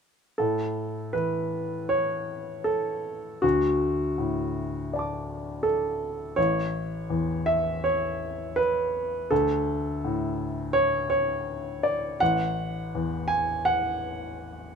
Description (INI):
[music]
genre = neoclassical minimalist piano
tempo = 82 BPM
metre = 4/4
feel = rubato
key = A major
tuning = A4 = 436 Hz
[part]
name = warm baby grand piano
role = solo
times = 0.4-14.8 s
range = A1 to D6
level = -25 LUFS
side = equal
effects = none
[sound]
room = light reverb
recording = minimal, uncompressed stereo recording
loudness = -25 LUFS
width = side -6 dB against mid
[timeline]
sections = 0.4-14.8 A section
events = none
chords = 0.4 A; 3.4 D; 6.4 A; 9.3 D5; 12.2 A5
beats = | 0.39 1.15 1.91 2.67 | 3.43 4.18 4.92 5.65 | 6.37 7.10 7.84 8.58 | 9.31 10.03 10.74 11.47 | 12.21 12.94 13.66 14.40